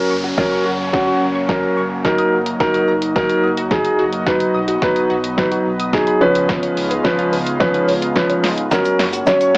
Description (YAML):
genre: dance-pop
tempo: 108 BPM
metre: 4/4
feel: straight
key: F# major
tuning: A4 = 444 Hz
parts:
  - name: warm concert grand piano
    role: accompaniment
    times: 0.0-9.6 s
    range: E#3 to C#5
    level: -16 LUFS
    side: equal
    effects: sidechain pumping, cassette tape
  - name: airy breathy pad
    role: sustained chords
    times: 0.0-9.6 s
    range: C#3 to E#4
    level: -23 LUFS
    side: equal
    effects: chorus, sidechain pumping, cassette tape
  - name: downlifter and riser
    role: sound effects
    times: 0.0-4.3, 8.7-9.6 s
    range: none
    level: -31 LUFS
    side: equal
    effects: none
  - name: wide unison pluck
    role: arpeggios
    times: 0.1-9.6 s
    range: E#4 to D#6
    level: -26 LUFS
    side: equal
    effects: sidechain pumping, cassette tape, tape echo
  - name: sub bass with octave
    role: bass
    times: 0.1-9.6 s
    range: F#1 to F#2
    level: -36 LUFS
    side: equal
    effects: sidechain pumping
  - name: punchy analog drum machine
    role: drums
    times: 0.4-9.6 s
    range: hi-hat, kick drum, shaker, snare drum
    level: -21 LUFS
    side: equal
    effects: cassette tape
  - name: tube shaker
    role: percussion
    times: 8.7-9.5 s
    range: none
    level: -42 LUFS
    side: left 1 dB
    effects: none
room: moderate small room reverb, RT60 0.5 s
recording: home recording on cassette, high-pass filter, small speaker sound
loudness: -14 LUFS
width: side -27 dB against mid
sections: 0.0-9.6 A section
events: build-up 0.0-9.6; drum fill 0.0-9.6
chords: 0.0 F#; 2.0 D#m/F#; 4.3 B; 6.2 C#7; 8.7 F#